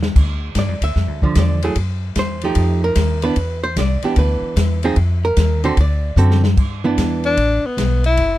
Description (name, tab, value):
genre	jazz, small-group swing and bop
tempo	150 BPM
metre	4/4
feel	swing 66% on 8ths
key	unclear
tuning	A4 = 440 Hz
part	upright bass	bass	0.0-8.4 s	F#1 to G2	-17 LUFS	equal	none
part	open jazz drum kit	drums	0.0-8.3 s	crash cymbal, hi-hat, kick drum, ride cymbal, snare drum	-22 LUFS	left 1 dB	none
part	archtop guitar, miked and amplified	accompaniment	0.6-7.4 s	D3 to E5	-20 LUFS	right 3 dB	none
part	clear tenor saxophone	melody	7.3-8.4 s	B3 to E4	-17 LUFS	left 3 dB	none
room	little or no reverb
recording	dark, warm production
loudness	-15 LUFS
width	side -15 dB against mid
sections	0.0-6.6 A section; 6.6-8.4 A section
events	drum fill 0.0, 6.2-6.6; tenor saxophone solo 6.6-8.4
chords	0.2 Dmadd9; 1.8 F#m7; 2.6 F9; 3.4 E7(no3); 5.0 F5; 5.8 D7; 6.6 G6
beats	| 0.15 0.56 0.96 1.36 | 1.76 2.16 2.56 2.96 | 3.36 3.76 4.17 4.57 | 4.97 5.37 5.77 6.17 | 6.57 6.97 7.38 7.78 | 8.18